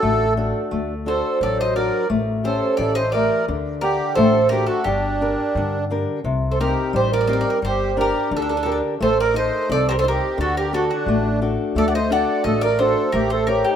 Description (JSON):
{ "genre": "greek folk, Greek bouzouki band", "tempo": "87 BPM", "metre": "2/4", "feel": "straight", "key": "unclear", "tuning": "A4 = 440 Hz", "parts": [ { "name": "Greek bouzouki", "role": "melody", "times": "0.0-13.8 s", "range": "F#4 to F#5", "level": "-23 LUFS", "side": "right 1 dB", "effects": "none" }, { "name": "accordion", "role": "second line", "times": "0.0-13.8 s", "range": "D4 to D5", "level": "-23 LUFS", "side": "right 4 dB", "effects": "light tremolo tuning" }, { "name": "fingerpicked steel-string acoustic guitar", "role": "accompaniment", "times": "0.0-13.8 s", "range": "C3 to F#5", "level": "-23 LUFS", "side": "left 3 dB", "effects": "none" }, { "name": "upright bass", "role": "bass", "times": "0.0-13.6 s", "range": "G1 to G2", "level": "-26 LUFS", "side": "left 1 dB", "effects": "none" } ], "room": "moderate lush hall reverb, RT60 2.3 s", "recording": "rough home demo mix", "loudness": "-18 LUFS", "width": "side -8 dB against mid", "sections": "0.0-6.2 A section; 6.2-13.8 A section", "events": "none", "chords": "0.0 D; 2.1 A7; 3.5 D; 4.9 Gm; 6.2 Cm; 7.6 Gm; 9.0 Adim; 10.4 D; 13.1 A7" }